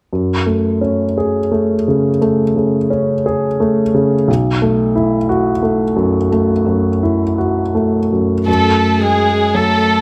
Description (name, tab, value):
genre	neoclassical piano and strings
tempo	57 BPM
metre	4/4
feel	rubato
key	F# minor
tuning	A4 = 440 Hz
part	warm upright piano	accompaniment	0.1-10.0 s	B1 to G#4	-16 LUFS	equal	none
part	warm chamber violin section	melody	8.5-10.0 s	G#4 to A4	-16 LUFS	equal	none
part	clear cello	second line	8.5-10.0 s	G#3 to A3	-20 LUFS	equal	none
room	moderate large studio reverb, RT60 1.2 s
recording	none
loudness	-15 LUFS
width	mono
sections	0.1-8.5 A section; 8.5-10.0 B section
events	none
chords	0.1 F#madd9; 4.3 B7sus4; 8.5 F#madd9